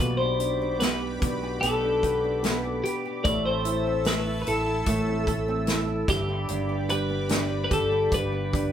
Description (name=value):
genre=pop ballad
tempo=74 BPM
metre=4/4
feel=straight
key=unclear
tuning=A4 = 439 Hz
part: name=twelve-string electric guitar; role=melody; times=0.0-8.7 s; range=G4 to D5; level=-27 LUFS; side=left 3 dB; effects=none
part: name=felt-muted upright piano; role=accompaniment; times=0.0-8.7 s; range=B2 to E4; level=-31 LUFS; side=right 2 dB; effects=none
part: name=sweeping resonant pad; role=sustained chords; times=0.0-8.7 s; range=G4 to E6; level=-35 LUFS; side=equal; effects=chorus
part: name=flamenco guitar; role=arpeggios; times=0.0-8.7 s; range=G2 to B4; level=-34 LUFS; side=right 3 dB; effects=none
part: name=fretless electric bass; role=bass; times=0.0-8.7 s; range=G1 to B1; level=-31 LUFS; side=equal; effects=none
part: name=natural country drum kit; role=drums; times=0.4-8.7 s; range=hi-hat, kick drum, snare drum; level=-28 LUFS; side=equal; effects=none
room=moderate studio ambience, RT60 0.5 s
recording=band playing live in one room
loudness=-23 LUFS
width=side -9 dB against mid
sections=0.0-8.7 A section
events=none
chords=0.0 G/B; 3.2 Am; 6.1 G